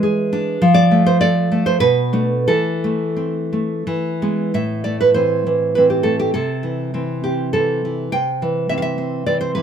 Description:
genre	romantic piece for solo classical guitar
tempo	84-106 BPM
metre	3/4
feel	rubato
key	A minor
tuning	A4 = 440 Hz
part	nylon-string guitar	solo	0.0-9.6 s	A2 to G5	-16 LUFS	right 1 dB	none
room	light reverb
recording	minimal, uncompressed stereo recording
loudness	-16 LUFS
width	side -8 dB against mid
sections	0.0-4.5 A section; 4.5-9.6 B section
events	none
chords	0.0 E7; 0.6 F; 1.8 Bm7; 2.5 Am/E; 3.9 E; 4.5 Am; 6.4 Am/C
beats	0.04 | 0.62 1.21 1.82 | 2.50 3.20 3.87 | 4.54 5.15 5.76 | 6.35 6.94 7.53 | 8.12 8.69 9.27

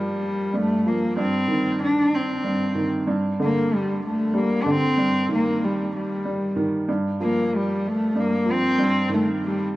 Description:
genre	six-eight pop ballad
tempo	63 BPM (dotted quarters)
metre	6/8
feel	straight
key	G minor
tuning	A4 = 439 Hz
part	warm cello	melody	0.0-9.8 s	G3 to D4	-22 LUFS	left 1 dB	tape echo
part	bright upright piano	accompaniment	0.0-9.8 s	G2 to G3	-24 LUFS	right 1 dB	none
room	moderate plate reverb, RT60 3.6 s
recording	worn, warbling old tape, cassette tape, warbly pitch drift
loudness	-20 LUFS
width	side -17 dB against mid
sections	0.0-9.8 A section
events	none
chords	0.0 Gm9; 1.2 Cm/G; 3.1 G5; 5.0 Eb/G; 6.9 Gm7; 8.8 Cm/G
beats	0.23 | 1.18 2.13 | 3.08 4.03 | 4.98 5.93 | 6.89 7.84 | 8.79 9.74

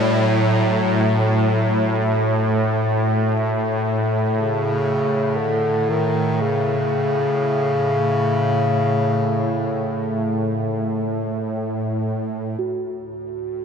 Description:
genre	dark ambient drone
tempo	free time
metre	none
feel	none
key	D major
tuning	A4 = 441 Hz
part	warm bass clarinet	melody	0.0-11.6 s	C#3 to G3	-22 LUFS	left 1 dB	ping-pong delay
part	bowed-like drone	drone	0.0-13.6 s	D2 to A2	-20 LUFS	equal	built-in reverb
part	bronze singing bowl	texture	0.0-13.6 s	F#4	-33 LUFS	right 4 dB	none
room	wet lush hall reverb, RT60 2.8 s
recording	dreamy mix soaked in reverb, cassette tape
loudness	-18 LUFS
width	side -6 dB against mid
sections	0.0-12.6 A section; 12.6-13.6 B section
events	none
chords	0.0 D (rootless); 12.6 D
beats	free time

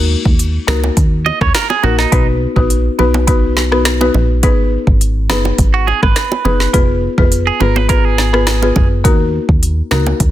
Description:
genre	dancehall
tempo	104 BPM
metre	4/4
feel	straight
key	Eb minor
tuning	A4 = 442 Hz
part	buzzing marimba with medium mallets	accompaniment	0.0-10.1 s	Bb3 to B4	-17 LUFS	left 3 dB	none
part	plucky analog bass	bass	0.0-10.3 s	F1 to Eb2	-15 LUFS	equal	none
part	deep house drum kit	drums	0.3-10.3 s	hi-hat, kick drum, rim click, snare drum	-14 LUFS	equal	none
part	bongos	percussion	0.7-10.2 s	none	-22 LUFS	right 5 dB	none
part	clean electric guitar	arpeggios	1.3-2.3, 5.7-8.9 s	Eb4 to Eb5	-17 LUFS	right 9 dB	none
room	digital ambience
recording	dense, heavily limited modern master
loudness	-11 LUFS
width	side -13 dB against mid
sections	0.0-10.3 A section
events	none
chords	0.0 Ebm; 2.1 B; 4.4 Abm; 6.7 Fdim; 9.0 Ebm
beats	0.39 0.97 1.55 | 2.12 2.70 3.28 3.85 | 4.43 5.01 5.59 6.16 | 6.74 7.32 7.89 8.47 | 9.05 9.62 10.20

